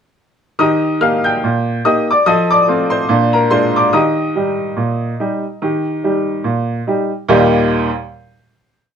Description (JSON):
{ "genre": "ragtime piano", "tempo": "72 BPM", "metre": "2/4", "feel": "swing 57% on 16ths", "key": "Eb major", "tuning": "A4 = 442 Hz", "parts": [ { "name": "bright upright piano", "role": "solo", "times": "0.6-7.9 s", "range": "Eb2 to G6", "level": "-13 LUFS", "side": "equal", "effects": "none" } ], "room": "moderate studio ambience, RT60 0.5 s", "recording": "dark, warm production", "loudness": "-13 LUFS", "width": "side -7 dB against mid", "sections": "0.6-7.3 A section; 7.3-8.9 final chord", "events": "none", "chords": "0.6 Eb; 2.3 F7; 3.1 Bb7; 3.9 Eb", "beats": "| 0.60 1.44 | 2.27 3.10 | 3.94 4.77 | 5.61 6.45 | 7.28" }